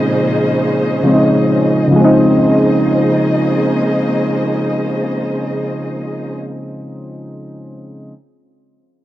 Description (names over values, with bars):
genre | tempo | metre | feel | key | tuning
contemporary R&B | free time | none | none | Bb minor | A4 = 443 Hz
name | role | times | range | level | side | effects
soft electric-piano-like synth keys | accompaniment | 0.0-8.1 s | Db3 to Eb4 | -14 LUFS | equal | chorus
warm symphonic string section | sustained chords | 0.0-6.4 s | Bb2 to Eb5 | -19 LUFS | equal | none
room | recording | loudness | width
light reverb, small room ambience | dry, gritty hardware recording, transformer saturation | -12 LUFS | side -14 dB against mid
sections
0.0-2.0 A section; 2.0-5.6 B section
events
none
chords
0.0 Bbm11